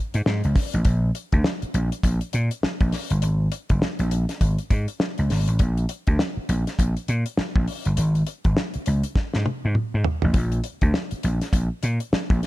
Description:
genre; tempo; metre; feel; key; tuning
funk; 101 BPM; 4/4; swing 60% on 16ths; unclear; A4 = 440 Hz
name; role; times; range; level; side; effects
vintage slap bass; bass; 0.1-12.4 s; Gb1 to Bb2; -22 LUFS; equal; none
damped 70s drum kit; drums; 0.1-12.5 s; hi-hat, kick drum, snare drum, toms; -24 LUFS; equal; none
room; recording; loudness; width
little or no reverb; none; -21 LUFS; side -17 dB against mid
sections
0.0-10.3 A section; 10.3-12.5 A section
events
drum fill 9.2-10.3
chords
none

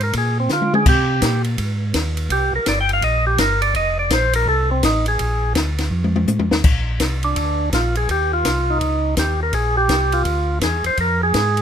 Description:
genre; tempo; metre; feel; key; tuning
soul jazz organ trio; 166 BPM; 4/4; swing 63% on 8ths; Bb mixolydian; A4 = 440 Hz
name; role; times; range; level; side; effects
percussive tonewheel organ; melody; 0.0-11.6 s; C4 to G5; -19 LUFS; right 1 dB; slow rotary speaker
mellow tonewheel organ; bass; 0.0-11.6 s; F1 to D3; -21 LUFS; equal; slow rotary speaker
compact cocktail drum kit; drums; 0.0-11.6 s; crash cymbal, hi-hat, kick drum, ride cymbal, snare drum, toms; -21 LUFS; left 2 dB; none
room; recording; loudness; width
light reverb; minimal, uncompressed stereo recording; -16 LUFS; side -8 dB against mid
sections
0.0-6.6 A section; 6.6-11.6 A section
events
tonewheel organ solo 0.0-6.6, 6.6-11.6; drum fill 0.5-0.9, 5.9-6.6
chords
0.0 Bb7; 0.9 Cm7; 3.8 F; 5.2 Bb7; 5.9 F7; 6.6 Bb; 8.1 Cmadd11; 9.5 Bb; 11.0 Fm

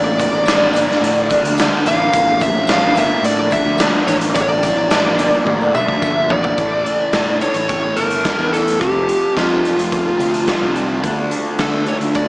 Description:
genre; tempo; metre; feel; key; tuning
psychedelic rock; 108 BPM; 4/4; straight; unclear; A4 = 440 Hz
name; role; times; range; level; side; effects
fuzz lead guitar; melody; 0.0-12.3 s; F4 to F5; -17 LUFS; equal; distortion, analog delay
ensemble organ-string; sustained chords; 0.0-12.3 s; C#3 to A5; -26 LUFS; right 1 dB; none
fuzz guitar; riff; 0.0-12.3 s; F2 to D4; -21 LUFS; equal; distortion, phaser, analog delay
fuzz fingered electric bass; bass; 0.0-12.3 s; F1 to D3; -23 LUFS; equal; overdrive
raw garage drum kit; drums; 0.2-12.3 s; hi-hat, kick drum, snare drum, toms; -20 LUFS; equal; analog delay
tambourine; percussion; 0.2-6.5 s; none; -36 LUFS; left 1 dB; none
room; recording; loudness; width
wet spring reverb, RT60 1.6 s, small room ambience; echo-heavy mix, small speaker sound; -13 LUFS; side -24 dB against mid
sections
0.0-6.6 A section; 6.6-12.3 B section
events
drum fill 5.5-6.6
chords
0.0 Bb; 6.6 A; 8.8 F; 11.0 Dm

